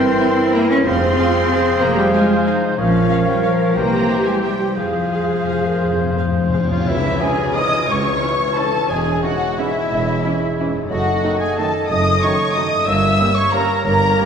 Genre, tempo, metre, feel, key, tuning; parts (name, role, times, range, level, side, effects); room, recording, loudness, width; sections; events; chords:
classical, orchestral ballroom waltz; 159-200 BPM; 3/4; rubato; F minor, C# minor from 6.9 s; A4 = 439 Hz
dark symphonic violin section; melody; 0.0-14.3 s; E5 to E6; -24 LUFS; left 1 dB
dark clarinet; second line; 0.0-14.3 s; G4 to D#5; -26 LUFS; equal
mellow concert flute; second line; 0.0-14.3 s; E5 to E6; -25 LUFS; left 1 dB
warm oboe; second line; 0.0-14.3 s; E4 to E5; -26 LUFS; right 1 dB
dark bassoon; accompaniment; 0.0-14.3 s; E3 to Bb3; -24 LUFS; equal
dark symphonic viola section; accompaniment; 0.0-14.2 s; A3 to Bb4; -26 LUFS; right 2 dB
mellow French horn section; sustained chords; 0.0-14.3 s; F3 to D#4; -26 LUFS; left 2 dB
concert harp; arpeggios; 0.0-14.3 s; E2 to C6; -27 LUFS; left 5 dB
clear symphonic double bass section; bass; 0.0-14.1 s; E1 to F2; -26 LUFS; right 2 dB
rich symphonic cello section; bass; 0.0-14.1 s; C#2 to Db4; -23 LUFS; right 2 dB
warm symphonic violin section; second line; 0.2-14.3 s; E4 to F5; -28 LUFS; left 3 dB
timpani; percussion; 0.8-1.3, 3.8-6.9 s; F2 to C3; -27 LUFS; left 2 dB
cymbal swell and tam-tam; percussion; 4.8-8.2 s; -32 LUFS; left 2 dB
mellow tuba; bass; 6.9-14.1 s; E1 to C#2; -27 LUFS; right 2 dB
bright trombone section; sustained chords; 7.2-14.3 s; F#2 to G3; -30 LUFS; right 3 dB
wet scoring stage reverb, RT60 1.8 s; heard from further back in the room; -15 LUFS; side -7 dB against mid
0.0-6.9 A section; 6.9-14.3 B section
timpani fill 4.8-6.9; band accent 6.9-7.2
0.0 C7/G; 0.9 Fm; 2.8 Bbm; 3.8 C7; 4.8 Fm; 6.9 C#m; 8.9 C#m/E; 10.9 D#dim/F#; 12.9 Gdim7